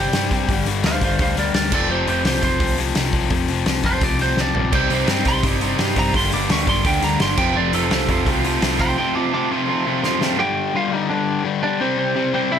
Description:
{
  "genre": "punk rock",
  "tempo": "170 BPM",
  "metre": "4/4",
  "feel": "straight",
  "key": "G minor",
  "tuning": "A4 = 440 Hz",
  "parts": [
    { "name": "lightly driven lead guitar", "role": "melody", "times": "0.0-12.6 s", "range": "C4 to D6", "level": "-23 LUFS", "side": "right 3 dB", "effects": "none" },
    { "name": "distorted electric guitar", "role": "riff", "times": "0.0-12.6 s", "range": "F2 to C4", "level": "-22 LUFS", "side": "left 8 dB", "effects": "distortion" },
    { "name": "overdriven picked electric bass", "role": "bass", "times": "0.0-8.9 s", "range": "F1 to G2", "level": "-24 LUFS", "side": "right 1 dB", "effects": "none" },
    { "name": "loose indie drum kit", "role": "drums", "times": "0.1-10.3 s", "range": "crash cymbal, hi-hat, kick drum, snare drum, toms", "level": "-22 LUFS", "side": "equal", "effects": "none" },
    { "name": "cranked stack guitar", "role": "riff", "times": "4.7-10.4 s", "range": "F2 to G4", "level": "-23 LUFS", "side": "right 18 dB", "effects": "overdrive" }
  ],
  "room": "little or no reverb",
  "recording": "none",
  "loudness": "-17 LUFS",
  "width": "side -8 dB against mid",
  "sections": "0.0-10.4 A section; 10.4-12.6 B section",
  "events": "lead electric guitar solo 0.0-10.4; drum fill 4.4-4.7, 10.0-10.4",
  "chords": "0.5 Gm; 1.7 F5; 4.7 Cm; 6.1 Gm; 7.4 F; 10.4 G5; 11.8 C5"
}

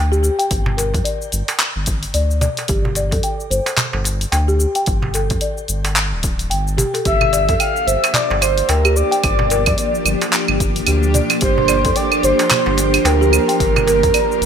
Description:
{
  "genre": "organic downtempo",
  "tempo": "110 BPM",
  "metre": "4/4",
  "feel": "swing 59% on 16ths",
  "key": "G dorian",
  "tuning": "A4 = 443 Hz",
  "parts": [
    { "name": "folk marimba with soft mallets", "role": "arpeggios", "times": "0.0-14.3 s", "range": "G4 to G5", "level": "-22 LUFS", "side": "left 1 dB", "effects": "digital delay, shimmer reverb" },
    { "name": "round analog bass", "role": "bass", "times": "0.0-14.5 s", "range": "D1 to G2", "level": "-19 LUFS", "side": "equal", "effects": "sidechain pumping" },
    { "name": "deep house drum kit", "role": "drums", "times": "0.1-14.5 s", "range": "claves, handclaps, hi-hat, shaker", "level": "-20 LUFS", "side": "right 1 dB", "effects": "none" },
    { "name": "electronic kick drum", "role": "drums", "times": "0.5-14.1 s", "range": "none", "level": "-22 LUFS", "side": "equal", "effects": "none" },
    { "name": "darbuka", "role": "percussion", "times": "0.7-14.1 s", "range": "none", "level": "-26 LUFS", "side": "right 3 dB", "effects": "none" },
    { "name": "breathy flute-like synth lead", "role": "melody", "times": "7.1-14.5 s", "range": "Bb4 to F5", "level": "-18 LUFS", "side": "right 2 dB", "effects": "wide subtle chorus, digital delay, shimmer reverb" },
    { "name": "granular cloud pad", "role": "sustained chords", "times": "7.7-14.5 s", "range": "F3 to G4", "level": "-22 LUFS", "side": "equal", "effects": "built-in reverb, analog chorus, sidechain pumping, shimmer reverb" }
  ],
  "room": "moderate plate reverb, RT60 2.9 s",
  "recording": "bright 1980s-style digital production",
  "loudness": "-14 LUFS",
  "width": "side -8 dB against mid",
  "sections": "0.0-14.5 A section",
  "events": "none",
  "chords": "0.0 Csus2/G (rootless); 2.7 Am7/G (rootless); 7.1 Gm7"
}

